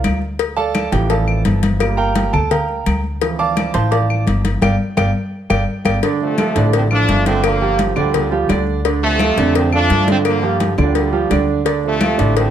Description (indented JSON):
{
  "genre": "latin, salsa",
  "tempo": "170 BPM",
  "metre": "4/4",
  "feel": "straight",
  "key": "D minor",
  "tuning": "A4 = 436 Hz",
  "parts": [
    { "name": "clear concert grand piano", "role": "accompaniment", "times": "0.0-12.5 s", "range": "D3 to D6", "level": "-19 LUFS", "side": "right 6 dB", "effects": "none" },
    { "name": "upright bass", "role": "bass", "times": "0.0-12.5 s", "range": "G1 to G2", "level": "-19 LUFS", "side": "left 1 dB", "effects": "none" },
    { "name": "claves", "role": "percussion", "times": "0.0-12.2 s", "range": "none", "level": "-28 LUFS", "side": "left 8 dB", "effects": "none" },
    { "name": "congas", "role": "percussion", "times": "0.0-12.5 s", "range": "none", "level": "-22 LUFS", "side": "left 2 dB", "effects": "none" },
    { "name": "cowbell", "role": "percussion", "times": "0.0-12.5 s", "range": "none", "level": "-23 LUFS", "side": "left 10 dB", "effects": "none" },
    { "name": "brilliant trombone section", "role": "melody", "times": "6.2-12.5 s", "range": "Bb2 to D4", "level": "-19 LUFS", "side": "right 1 dB", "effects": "none" }
  ],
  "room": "moderate large studio reverb, RT60 1.2 s",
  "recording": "none",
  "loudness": "-14 LUFS",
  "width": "side -10 dB against mid",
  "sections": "0.0-6.0 A section; 6.0-12.5 B section",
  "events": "grand piano solo 0.0-6.0; band accent 4.6-6.0; drum fill 5.0-6.0",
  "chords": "0.4 Dm7; 1.8 Gm7; 3.2 Dm7; 4.6 G5; 6.0 Dm7; 7.4 Gm7; 8.8 Dm7; 10.3 Gm7; 11.7 Dm7",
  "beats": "0.04 | 0.40 0.75 1.10 1.45 | 1.81 2.16 2.51 2.86 | 3.21 3.57 3.92 4.27 | 4.62 4.97 5.33 5.68 | 6.03 6.38 6.74 7.09 | 7.44 7.79 8.14 8.49 | 8.85 9.20 9.55 9.90 | 10.25 10.61 10.96 11.31 | 11.66 12.01 12.37"
}